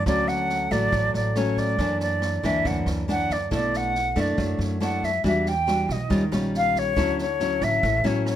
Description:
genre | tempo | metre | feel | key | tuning
bossa nova | 139 BPM | 4/4 | straight | unclear | A4 = 440 Hz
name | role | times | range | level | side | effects
concert flute | melody | 0.0-8.4 s | C#5 to G5 | -24 LUFS | equal | none
nylon-string guitar | accompaniment | 0.0-8.4 s | F#2 to F#4 | -25 LUFS | left 1 dB | none
upright bass | bass | 0.0-8.4 s | A1 to F#2 | -30 LUFS | right 1 dB | none
swinging big-band drum kit | drums | 0.1-8.4 s | kick drum, rim click, snare drum | -34 LUFS | right 1 dB | none
room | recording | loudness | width
light reverb | none | -21 LUFS | side -11 dB against mid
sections
0.0-8.4 A section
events
none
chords
0.1 Dmaj7; 1.8 F#aug7; 3.5 Bm7; 5.2 Em9; 6.1 D#9; 7.0 Dmaj9

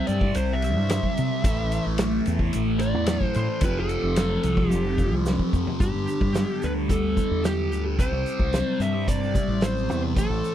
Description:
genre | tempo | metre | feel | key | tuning
psychedelic rock | 110 BPM | 4/4 | straight | unclear | A4 = 440 Hz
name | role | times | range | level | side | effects
fuzz lead guitar | melody | 0.0-10.5 s | G4 to E5 | -30 LUFS | equal | distortion, tape echo
thick fuzz guitar | riff | 0.0-10.5 s | F2 to C4 | -26 LUFS | equal | distortion, phaser
growling fingered electric bass | bass | 0.1-10.4 s | F1 to C3 | -27 LUFS | equal | overdrive
vintage drum kit | drums | 0.1-10.5 s | hi-hat, kick drum, ride cymbal, snare drum, toms | -27 LUFS | equal | none
tube shaker | percussion | 0.1-10.5 s | none | -45 LUFS | right 6 dB | none
room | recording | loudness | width
little or no reverb | none | -21 LUFS | side -11 dB against mid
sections
0.0-5.8 A section; 5.8-10.5 B section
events
lead electric guitar solo 0.0-5.8; drum fill 4.7-5.8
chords
0.0 C; 1.4 A5; 3.6 F; 5.8 G5; 8.0 C

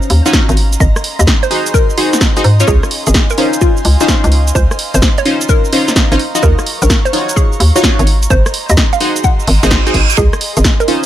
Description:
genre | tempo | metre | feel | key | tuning
UK garage, two-step garage | 128 BPM | 4/4 | swing 67% on 16ths | Db major | A4 = 437 Hz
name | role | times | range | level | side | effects
hollow square pluck | melody | 0.0-10.9 s | F4 to Gb5 | -19 LUFS | equal | chorus, ping-pong delay
airy breathy pad | sustained chords | 0.0-11.1 s | Db4 to Db6 | -25 LUFS | right 2 dB | chorus, sidechain pumping
punchy chord stab | stabs | 0.0-11.1 s | Db4 to Eb5 | -16 LUFS | left 1 dB | chorus, ping-pong delay
punchy analog drum machine | drums | 0.0-11.1 s | hi-hat, rim click, shaker, snare drum | -16 LUFS | right 1 dB | none
hollow knocking FM bass | bass | 0.1-10.6 s | Ab1 to Ab2 | -11 LUFS | equal | sidechain pumping
electronic kick drum | drums | 0.3-10.8 s | none | -13 LUFS | equal | none
reverse cymbal | sound effects | 9.5-10.2 s | none | -18 LUFS | right 6 dB | none
room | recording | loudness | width
digital ambience | none | -9 LUFS | side -12 dB against mid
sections
0.0-11.1 A section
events
reverse cymbal 9.5-10.2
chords
0.0 Ebm9; 0.6 Ab7; 2.7 Dbmaj9; 6.2 Ebm9; 8.1 Ab7; 10.2 Dbmaj9

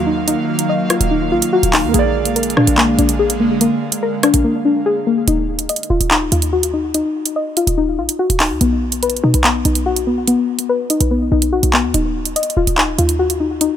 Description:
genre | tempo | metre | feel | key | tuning
hip hop, drill | 144 BPM | 4/4 | half-time | Eb harmonic minor | A4 = 438 Hz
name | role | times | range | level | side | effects
dark concert grand piano | accompaniment | 0.0-5.3 s | Gb3 to D5 | -25 LUFS | right 10 dB | none
airy breathy pad | sustained chords | 0.0-5.2 s | D3 to F5 | -21 LUFS | right 3 dB | chorus
soft round pluck | arpeggios | 0.0-13.8 s | Bb3 to Eb5 | -16 LUFS | left 3 dB | chorus, low-pass filter, ping-pong delay
short 808-style bass | bass | 0.0-13.7 s | Eb1 to B2 | -19 LUFS | right 1 dB | none
drill drum kit | drums | 0.3-13.7 s | handclaps, hi-hat, rim click | -17 LUFS | right 2 dB | none
room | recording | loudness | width
little or no reverb | none | -14 LUFS | side -10 dB against mid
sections
0.0-5.3 A section; 5.3-13.8 B section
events
drums muted 4.4-5.3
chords
0.0 Ebmadd9; 1.9 Bb7; 5.3 Ebmadd9; 8.6 B; 11.9 Ebmadd9

